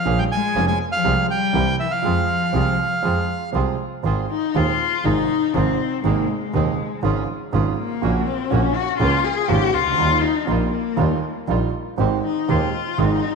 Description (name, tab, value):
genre	tango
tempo	121 BPM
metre	4/4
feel	rubato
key	F minor, Ab major from 4.1 s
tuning	A4 = 440 Hz
part	bandoneon	melody	0.0-3.5 s	E5 to Ab5	-22 LUFS	right 3 dB	slapback echo
part	warm cello	second line	0.0-13.3 s	E3 to Ab4	-23 LUFS	left 10 dB	none
part	bandoneon	stabs	0.0-13.2 s	G3 to Bb4	-28 LUFS	right 6 dB	none
part	dark baby grand piano	accompaniment	0.1-13.2 s	Eb1 to Ab4	-24 LUFS	right 8 dB	none
part	rich double bass	bass	0.1-13.2 s	F1 to F2	-23 LUFS	equal	none
room	wet echo chamber reverb, RT60 2.0 s, small room ambience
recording	1960s-style stereo with parts hard left and right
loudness	-18 LUFS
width	side -5 dB against mid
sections	0.0-4.1 A section; 4.1-13.3 B section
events	cello solo 4.1-13.3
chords	0.1 Bbm7; 1.0 Fm/C; 1.5 C7; 2.0 Fm; 4.1 Ab6; 5.1 Fm7/Ab; 6.0 Ab; 7.0 Db/Ab; 8.0 Gb/Bb; 9.0 Db6; 10.0 Ebadd9; 12.0 Abmaj7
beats	| 0.05 0.55 1.04 1.54 | 2.04 2.54 3.04 3.54 | 4.05 4.55 5.06 5.55 | 6.05 6.54 7.03 7.53 | 8.02 8.51 9.00 9.49 | 9.98 10.48 10.98 11.48 | 11.99 12.49 12.99